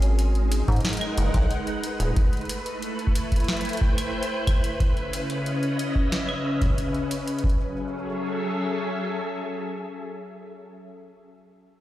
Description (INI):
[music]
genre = IDM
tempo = 91 BPM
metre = 4/4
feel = straight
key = F# dorian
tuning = A4 = 443 Hz
[part]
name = soft string machine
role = sustained chords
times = 0.0-10.8 s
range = C#3 to G5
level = -28 LUFS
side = equal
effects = ensemble chorus
[part]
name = deep acid bass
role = bass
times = 0.0-2.1 s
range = D#1 to G#2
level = -21 LUFS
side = equal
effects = none
[part]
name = booming analog drum machine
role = drums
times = 0.0-7.6 s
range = claves, hi-hat, snare drum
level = -32 LUFS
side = equal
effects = digital delay
[part]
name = electronic kick drum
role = drums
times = 0.7-7.6 s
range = none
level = -24 LUFS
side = equal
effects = none
[sound]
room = light reverb, digital ambience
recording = played on a big sound system in a bare room, stone room reverb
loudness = -23 LUFS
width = side -14 dB against mid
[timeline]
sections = 0.0-7.4 A section; 7.4-10.1 B section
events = none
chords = 0.0 G#m9; 2.2 Am9; 4.8 C#m9; 7.4 F#m9